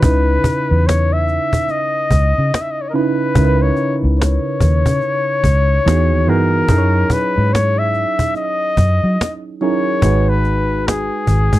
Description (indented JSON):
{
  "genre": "R&B, neo-soul",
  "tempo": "72 BPM",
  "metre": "4/4",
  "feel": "swing 61% on 16ths",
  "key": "C# dorian",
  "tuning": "A4 = 440 Hz",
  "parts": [
    { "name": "warm flugelhorn", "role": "melody", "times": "0.0-11.6 s", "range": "G#4 to E5", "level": "-19 LUFS", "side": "left 3 dB", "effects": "slapback echo" },
    { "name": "reed electric piano", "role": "accompaniment", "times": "0.0-11.6 s", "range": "C#3 to C#5", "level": "-20 LUFS", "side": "right 3 dB", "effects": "overdrive, phaser" },
    { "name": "vintage muted fingered electric bass", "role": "bass", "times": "0.0-11.6 s", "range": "G#1 to F#3", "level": "-15 LUFS", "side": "equal", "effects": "none" },
    { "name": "cajon", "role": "drums", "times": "0.0-11.6 s", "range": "none", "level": "-18 LUFS", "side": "equal", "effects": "none" }
  ],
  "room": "little or no reverb",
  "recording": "dark, warm production",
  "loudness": "-13 LUFS",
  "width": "side -15 dB against mid",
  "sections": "0.0-11.6 A section",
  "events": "none",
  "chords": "0.0 C#m9; 5.9 Emaj7; 6.7 F#7sus2; 10.0 G#m7"
}